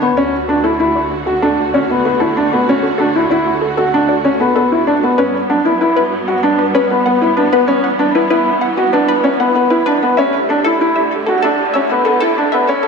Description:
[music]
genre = piano and strings electronica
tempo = 96 BPM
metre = 4/4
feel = straight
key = unclear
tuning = A4 = 440 Hz
[part]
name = dark symphonic string section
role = sustained chords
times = 0.0-12.9 s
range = D2 to C#5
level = -20 LUFS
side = right 3 dB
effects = shimmer reverb
[part]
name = felt-muted upright piano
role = riff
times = 0.0-12.9 s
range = B3 to F#4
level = -13 LUFS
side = equal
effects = digital delay, shimmer reverb
[part]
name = analog pluck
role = arpeggios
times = 0.2-12.9 s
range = A4 to F#5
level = -19 LUFS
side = left 2 dB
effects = chorus, phaser, digital delay, shimmer reverb
[sound]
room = wet echo chamber reverb, RT60 1.5 s, small room ambience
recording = high-pass filter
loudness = -12 LUFS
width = side -5 dB against mid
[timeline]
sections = 0.0-12.9 A section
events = build-up 0.0-12.9; filter sweep on synth arpeggio sound 0.0-12.9; filter sweep 0.0-12.9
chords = 0.2 D; 5.2 Gmaj7; 10.2 A7sus4

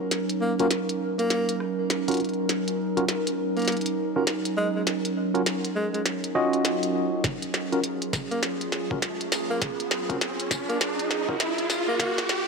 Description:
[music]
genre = glitch hop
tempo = 101 BPM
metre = 4/4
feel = swing 62% on 16ths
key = Eb minor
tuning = A4 = 441 Hz
[part]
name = warbly tape-like pad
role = sustained chords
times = 0.0-12.5 s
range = Gb3 to Bb4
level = -28 LUFS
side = right 2 dB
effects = chorus, built-in reverb, sidechain pumping
[part]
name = glitchy drum kit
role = drums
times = 0.1-12.4 s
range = hi-hat, rim click, snare drum, tambourine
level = -28 LUFS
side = left 1 dB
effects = high-pass filter on hats, high-pass filter on snare, high-pass filter on perc, high-pass filter on room
[part]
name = breathy tenor saxophone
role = melody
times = 0.4-12.2 s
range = Ab3 to Bb3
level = -30 LUFS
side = equal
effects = tape echo
[part]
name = tine electric piano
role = stabs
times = 0.6-11.4 s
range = Db4 to Eb5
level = -28 LUFS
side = equal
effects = fast stereo tremolo, sidechain pumping, low-pass filter, tape echo
[part]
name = electronic kick drum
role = drums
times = 7.2-12.1 s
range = none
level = -32 LUFS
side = equal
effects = overdrive
[part]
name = riser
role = sound effects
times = 8.5-12.5 s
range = none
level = -31 LUFS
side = right 1 dB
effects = none
[sound]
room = moderate lush hall reverb, RT60 2.0 s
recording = high-pass filter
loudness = -24 LUFS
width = side -4 dB against mid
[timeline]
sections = 0.0-12.5 A section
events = build-up 0.0-12.5; drum fill 0.0-12.5; filter sweep 0.0-12.5; riser 8.5-12.5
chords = 0.0 Ebm7

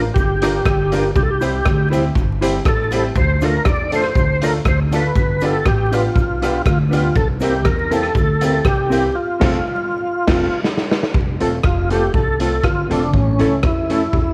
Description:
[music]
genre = ska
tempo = 120 BPM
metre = 4/4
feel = swing 54% on 8ths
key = F major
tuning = A4 = 440 Hz
[part]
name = mellow electric guitar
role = accompaniment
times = 0.0-14.0 s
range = C4 to C5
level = -26 LUFS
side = equal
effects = tremolo
[part]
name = bright upright piano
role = stabs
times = 0.0-14.2 s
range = G3 to Bb4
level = -28 LUFS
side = equal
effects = none
[part]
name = upright bass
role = bass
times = 0.0-14.3 s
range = E1 to F2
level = -23 LUFS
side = equal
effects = none
[part]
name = tonewheel organ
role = melody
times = 0.1-14.3 s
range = C#4 to D5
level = -23 LUFS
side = equal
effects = overdrive, chorus vibrato, slow rotary speaker
[part]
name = raw garage drum kit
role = drums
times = 0.2-14.3 s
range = crash cymbal, hi-hat, kick drum, rim click, snare drum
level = -22 LUFS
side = equal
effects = none
[part]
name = cabasa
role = percussion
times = 0.2-9.0 s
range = none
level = -52 LUFS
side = equal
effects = none
[sound]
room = light reverb, studio ambience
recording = vinyl crackle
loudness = -17 LUFS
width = mono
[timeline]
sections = 0.0-11.1 A section; 11.1-14.3 B section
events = band accent 9.1-11.1; drum fill 10.1-11.1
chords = 0.0 Bb; 1.2 C; 3.2 Dm; 5.2 G7; 7.2 C7; 9.1 F; 13.1 A

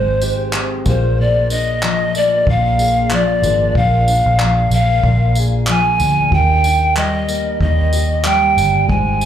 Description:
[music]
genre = acoustic pop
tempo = 93 BPM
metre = 4/4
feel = swing 60% on 16ths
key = Eb major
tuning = A4 = 440 Hz
[part]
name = breathy reedy pan flute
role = melody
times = 0.0-9.3 s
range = C5 to Ab5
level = -16 LUFS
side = equal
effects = plate reverb, slapback echo, tape echo
[part]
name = felt-muted upright piano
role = accompaniment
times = 0.0-9.3 s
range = G3 to F5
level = -32 LUFS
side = left 5 dB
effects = plate reverb, slapback echo
[part]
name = fingerpicked steel-string acoustic guitar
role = accompaniment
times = 0.0-9.3 s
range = Bb2 to Ab4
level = -21 LUFS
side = left 2 dB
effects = double-tracked left and right, plate reverb
[part]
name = vintage muted fingered electric bass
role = bass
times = 0.0-9.3 s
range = G1 to Eb2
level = -17 LUFS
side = right 1 dB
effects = none
[part]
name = unplugged drum kit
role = drums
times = 0.2-9.3 s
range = handclaps, kick drum, tambourine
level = -22 LUFS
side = equal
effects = slapback echo
[sound]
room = moderate club ambience, RT60 0.5 s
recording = live gig heard through the venue's PA, club reverb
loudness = -12 LUFS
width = side -10 dB against mid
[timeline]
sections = 0.0-9.3 A section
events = none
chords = 0.0 Abmaj7; 0.9 Bb7; 6.3 Ebmaj7

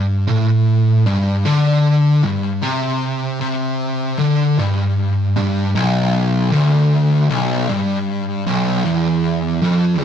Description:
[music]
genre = metal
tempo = 77 BPM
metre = 4/4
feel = straight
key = unclear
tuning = A4 = 440 Hz
[part]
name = fuzz guitar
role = solo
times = 0.0-10.0 s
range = B1 to D3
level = -14 LUFS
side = equal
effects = distortion
[sound]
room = moderate studio reverb, RT60 0.5 s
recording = rough rehearsal-room recording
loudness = -15 LUFS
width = side -8 dB against mid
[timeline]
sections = 0.0-10.0 A section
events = none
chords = none

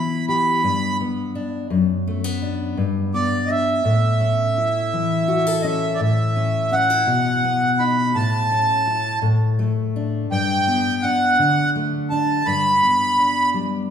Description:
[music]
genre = folk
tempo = 56 BPM (dotted quarters)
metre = 6/8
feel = straight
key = A mixolydian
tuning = A4 = 440 Hz
[part]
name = accordion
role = melody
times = 0.0-13.5 s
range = D5 to B5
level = -19 LUFS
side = right 2 dB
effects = none
[part]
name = fingerpicked steel-string acoustic guitar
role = accompaniment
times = 0.0-13.9 s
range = F#2 to A4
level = -21 LUFS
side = left 2 dB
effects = none
[sound]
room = wet recital hall reverb, RT60 1.5 s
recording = recorded in a church or concert hall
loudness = -17 LUFS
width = side -8 dB against mid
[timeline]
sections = 0.0-6.0 A section; 6.0-13.9 B section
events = accordion solo 0.0-6.0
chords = 0.0 Em; 0.6 G; 1.7 Bm/F#; 2.8 G; 3.9 A; 7.1 B; 8.2 A; 9.2 D5/A; 10.3 G; 11.4 D5; 12.5 G

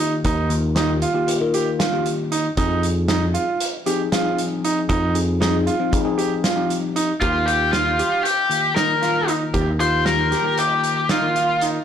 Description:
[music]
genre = progressive instrumental, band music in an uneven meter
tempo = 232 BPM (eighths)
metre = 9/8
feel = straight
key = Eb major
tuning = A4 = 439 Hz
[part]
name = bell-like tine electric piano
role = accompaniment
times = 0.0-11.8 s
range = Eb3 to Bb4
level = -25 LUFS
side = left 5 dB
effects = phaser
[part]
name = bright baby grand piano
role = arpeggios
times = 0.0-11.8 s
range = Eb4 to G4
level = -24 LUFS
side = right 4 dB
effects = none
[part]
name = fingered electric bass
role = bass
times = 0.2-10.3 s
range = Eb2 to F2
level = -22 LUFS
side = equal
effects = none
[part]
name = loose indie drum kit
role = drums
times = 0.2-11.7 s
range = hi-hat, kick drum, snare drum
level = -26 LUFS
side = right 1 dB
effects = none
[part]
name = biting lead guitar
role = melody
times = 7.2-11.6 s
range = F4 to C5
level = -19 LUFS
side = left 2 dB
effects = overdrive, digital delay
[sound]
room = moderate studio reverb, RT60 0.6 s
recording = blown-out, overdriven recording, overdrive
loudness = -18 LUFS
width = side -8 dB against mid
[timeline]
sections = 0.0-7.2 A section; 7.2-11.8 B section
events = none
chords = 0.0 Ebadd9; 2.6 Fm7; 7.2 Ebadd9

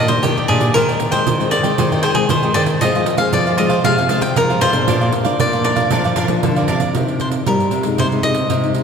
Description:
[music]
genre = samba and choro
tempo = 116 BPM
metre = 4/4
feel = straight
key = unclear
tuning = A4 = 441 Hz
[part]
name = cavaquinho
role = melody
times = 0.0-8.7 s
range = G4 to G5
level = -19 LUFS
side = left 1 dB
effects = none
[part]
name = cavaquinho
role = accompaniment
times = 0.0-6.9 s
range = D4 to G5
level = -22 LUFS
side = right 3 dB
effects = none
[part]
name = nylon-string guitar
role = accompaniment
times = 0.0-8.8 s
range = F2 to G4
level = -22 LUFS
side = left 4 dB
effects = none
[part]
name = nylon-string guitar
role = bass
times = 0.0-8.8 s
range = Bb2 to G3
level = -20 LUFS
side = equal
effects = none
[part]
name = pandeiro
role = percussion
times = 0.1-8.8 s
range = none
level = -21 LUFS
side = right 4 dB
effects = none
[sound]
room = wet cathedral reverb, RT60 4.2 s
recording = recorded in a church or concert hall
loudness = -14 LUFS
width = side -6 dB against mid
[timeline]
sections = 0.0-6.9 A section; 6.9-8.8 B section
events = none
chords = 0.0 Ebmaj7; 0.8 Abmaj7/Eb; 2.8 Fm; 4.9 Bb; 6.9 Cm7; 8.0 Abmaj7/C

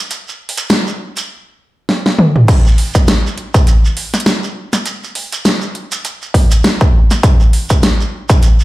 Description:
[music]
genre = glitch hop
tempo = 101 BPM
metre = 4/4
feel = swing 57% on 16ths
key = none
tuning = none
[part]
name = dubstep drum kit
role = drums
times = 0.1-8.6 s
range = crash cymbal, hi-hat, snare drum, toms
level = -14 LUFS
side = equal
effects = none
[part]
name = shekere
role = percussion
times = 0.1-8.6 s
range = none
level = -24 LUFS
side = right 4 dB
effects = none
[part]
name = electronic kick drum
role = drums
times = 2.5-8.4 s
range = none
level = -9 LUFS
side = equal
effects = high-pass filter on kick
[sound]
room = moderate studio reverb, RT60 0.6 s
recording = played on a big sound system in a bare room, stone room reverb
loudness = -11 LUFS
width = side -18 dB against mid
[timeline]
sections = 0.0-2.5 A section; 2.5-8.6 B section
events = build-up 0.0-2.5; drum fill 1.9-2.5; drop 2.5-8.6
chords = none

